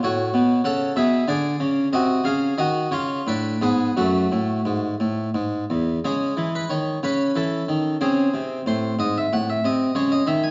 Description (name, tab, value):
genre	classical, baroque-style suite movement for harpsichord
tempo	57-66 BPM (dotted quarters)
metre	6/8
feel	rubato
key	F# minor, C# minor from 6.0 s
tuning	A4 = 439 Hz
part	harpsichord	solo	0.0-10.5 s	E2 to G#5	-22 LUFS	equal	none
room	wet recital hall reverb, RT60 1.4 s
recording	dark, warm production, vinyl crackle, nothing above 7.6 kHz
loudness	-22 LUFS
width	mono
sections	0.0-6.0 A section; 6.0-10.5 A section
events	none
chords	0.0 F#m/A; 1.0 G#dim/B; 1.9 G#7/B#; 2.9 C#7; 4.0 F#m; 6.0 C#m; 7.0 C#m9; 8.0 G#; 10.0 C#5